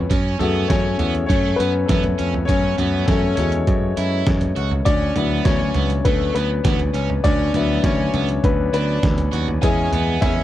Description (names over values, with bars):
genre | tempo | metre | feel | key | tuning
piano-driven pop | 101 BPM | 4/4 | straight | unclear | A4 = 440 Hz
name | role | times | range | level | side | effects
clear concert grand piano | accompaniment | 0.0-10.4 s | F#3 to G#5 | -22 LUFS | left 5 dB | none
modern bright picked electric bass | bass | 0.0-10.4 s | C#2 to F#2 | -21 LUFS | right 1 dB | none
overdriven electric guitar | riff | 0.1-10.4 s | A3 to F#4 | -26 LUFS | right 5 dB | none
trip hop sampler-style drum kit | drums | 0.1-10.4 s | hi-hat, kick drum, snare drum, toms | -22 LUFS | right 1 dB | overdrive
room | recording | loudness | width
little or no reverb | dry, close 1970s-style studio recording | -17 LUFS | side -13 dB against mid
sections
0.0-10.4 A section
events
grand piano solo 0.0-10.4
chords
0.1 F#madd9; 4.9 D6; 9.6 E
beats
| 0.10 0.70 1.29 1.89 | 2.49 3.08 3.68 4.27 | 4.87 5.46 6.06 6.65 | 7.25 7.84 8.44 9.03 | 9.63 10.22